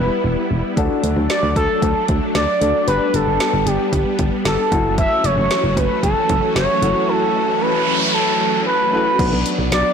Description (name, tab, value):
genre	synth-pop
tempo	114 BPM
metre	4/4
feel	straight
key	unclear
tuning	A4 = 440 Hz
part	expressive synth lead	melody	0.0-9.9 s	G4 to E5	-19 LUFS	equal	chorus, digital delay
part	dark baby grand piano	accompaniment	0.0-9.9 s	B3 to B4	-26 LUFS	left 5 dB	none
part	string machine, violas	sustained chords	0.0-9.9 s	E3 to F#4	-22 LUFS	equal	ensemble chorus
part	solid FM bass	bass	0.0-9.8 s	E1 to D2	-20 LUFS	equal	transformer saturation
part	deep house drum kit	drums	0.8-9.8 s	crash cymbal, hi-hat, kick drum, snare drum	-23 LUFS	equal	none
part	noise sweep	sound effects	7.3-9.2 s	none	-23 LUFS	right 2 dB	none
room	moderate lush hall reverb, RT60 2.1 s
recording	blown-out, overdriven recording, overdrive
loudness	-15 LUFS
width	side -7 dB against mid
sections	0.0-9.2 A section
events	noise sweep 7.3-9.2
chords	0.0 Em; 0.8 D; 2.9 G; 4.7 F#m7; 9.2 Bm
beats	0.24 | 0.77 1.30 1.82 2.35 | 2.88 3.40 3.93 4.46 | 4.98 5.51 6.04 6.56 | 7.09 7.61 8.14 8.67 | 9.19 9.72